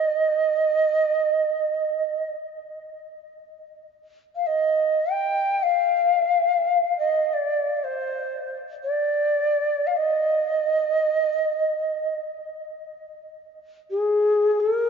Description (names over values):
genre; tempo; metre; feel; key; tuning
world meditative; free time; none; none; unclear; A4 = 441 Hz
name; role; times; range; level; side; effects
mellow Native American-style cedar flute; solo; 0.0-14.9 s; Ab4 to G5; -21 LUFS; right 1 dB; none
room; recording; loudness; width
wet cathedral reverb, RT60 5.2 s; dark, warm production, nothing above 7.5 kHz; -20 LUFS; side -6 dB against mid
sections
0.0-14.9 A section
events
none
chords
none